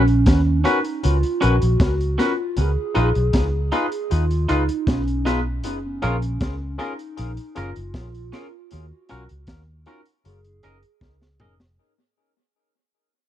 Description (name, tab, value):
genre	lovers rock reggae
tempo	78 BPM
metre	4/4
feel	straight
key	unclear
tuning	A4 = 440 Hz
part	hollow clarinet-like synth lead	melody	0.0-11.4 s	B3 to G#4	-26 LUFS	right 2 dB	chorus, phaser, tape echo
part	vintage muted fingered electric bass	bass	0.0-11.8 s	E#1 to D#2	-21 LUFS	equal	none
part	crunchy breakbeat drum kit	drums	0.1-11.8 s	hi-hat, kick drum, snare drum, toms	-22 LUFS	equal	tape echo
part	twangy electric guitar	stabs	0.6-11.5 s	C#4 to D#5	-26 LUFS	right 2 dB	none
part	barky tine electric piano	accompaniment	0.7-11.5 s	C#4 to B4	-26 LUFS	left 4 dB	analog chorus, tape echo
room	little or no reverb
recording	dry, close 1970s-style studio recording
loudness	-18 LUFS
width	side -11 dB against mid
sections	0.0-11.8 A section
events	fade-out 0.0-11.8; drum fill 11.0-11.8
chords	0.0 G#m11 (rootless); 2.6 C#9; 5.6 F#maj7; 8.7 D#m7; 10.2 F#69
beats	0.26 1.03 1.80 | 2.57 3.34 4.10 4.87 | 5.64 6.41 7.18 7.95 | 8.71 9.48 10.25 11.02